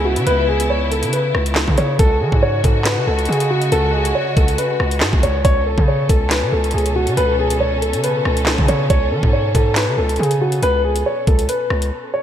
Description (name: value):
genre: hip hop, drill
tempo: 139 BPM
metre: 4/4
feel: half-time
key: unclear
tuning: A4 = 440 Hz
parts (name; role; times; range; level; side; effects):
- warm symphonic string section; sustained chords; 0.0-12.2 s; B2 to A4; -24 LUFS; equal; none
- distorted 808-style bass; bass; 0.0-11.9 s; C#2 to E3; -20 LUFS; equal; distortion
- dark grand piano; melody; 0.1-12.2 s; F#4 to C#5; -19 LUFS; equal; none
- drill drum kit; drums; 0.2-11.9 s; handclaps, hi-hat, kick drum, rim click, snare drum; -18 LUFS; equal; gated reverb
room: light reverb, digital ambience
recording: bright 1980s-style digital production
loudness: -14 LUFS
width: side -10 dB against mid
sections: 0.0-12.2 A section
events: break 11.9-12.2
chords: 0.0 C#m7; 2.0 F#sus2/C#; 5.4 Aadd9/C#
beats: | 0.27 0.70 1.13 1.56 | 1.99 2.42 2.86 3.29 | 3.72 4.15 4.58 5.01 | 5.45 5.88 6.31 6.74 | 7.17 7.61 8.04 8.47 | 8.90 9.33 9.76 10.20 | 10.63 11.06 11.49 11.92